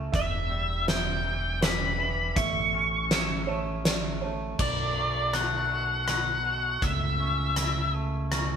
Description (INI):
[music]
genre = post-rock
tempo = 80 BPM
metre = 3/4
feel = straight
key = B minor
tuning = A4 = 440 Hz
[part]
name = twangy electric guitar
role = arpeggios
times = 0.0-8.6 s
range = B1 to E4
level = -37 LUFS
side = right 2 dB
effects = digital delay
[part]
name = growling fingered electric bass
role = bass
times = 0.0-8.6 s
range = E1 to C#2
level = -31 LUFS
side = equal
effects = overdrive
[part]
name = felt-muted upright piano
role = arpeggios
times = 0.1-4.6 s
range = B4 to E5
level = -36 LUFS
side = right 6 dB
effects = none
[part]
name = big rock drum kit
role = drums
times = 0.1-8.5 s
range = crash cymbal, hi-hat, kick drum, rim click, snare drum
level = -30 LUFS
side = equal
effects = none
[part]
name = octave-fuzz lead guitar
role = melody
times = 0.2-7.9 s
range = D5 to C#6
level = -28 LUFS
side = left 1 dB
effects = distortion
[sound]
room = light reverb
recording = band playing live in one room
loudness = -25 LUFS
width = side -7 dB against mid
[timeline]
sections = 0.0-4.6 A section; 4.6-8.6 A section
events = none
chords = 0.1 Em; 2.4 A; 4.6 Bm7; 6.8 A/C#